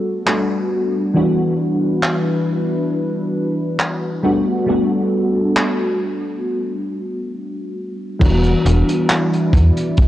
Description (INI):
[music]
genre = vaporwave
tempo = 68 BPM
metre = 4/4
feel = straight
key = E minor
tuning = A4 = 439 Hz
[part]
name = mellow FM electric piano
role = accompaniment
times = 0.0-10.1 s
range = E3 to F#4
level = -18 LUFS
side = equal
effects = ensemble chorus, analog delay
[part]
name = warbly tape-like pad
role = sustained chords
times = 0.0-10.1 s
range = G3 to D5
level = -25 LUFS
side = equal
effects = chorus, built-in reverb
[part]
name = crunchy breakbeat drum kit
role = drums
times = 0.3-10.1 s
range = crash cymbal, handclaps, hi-hat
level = -22 LUFS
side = equal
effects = none
[part]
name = slap-like FM bass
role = bass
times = 8.2-10.1 s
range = E1 to E2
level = -14 LUFS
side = equal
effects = none
[part]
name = kick drum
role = drums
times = 8.2-10.1 s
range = none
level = -15 LUFS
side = equal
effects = none
[sound]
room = light reverb, small room ambience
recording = cassette tape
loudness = -16 LUFS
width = side -14 dB against mid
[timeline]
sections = 0.0-8.2 A section; 8.2-10.1 B section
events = none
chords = 0.0 Gmaj9; 1.2 Em7; 4.2 Gmaj9; 8.2 Em7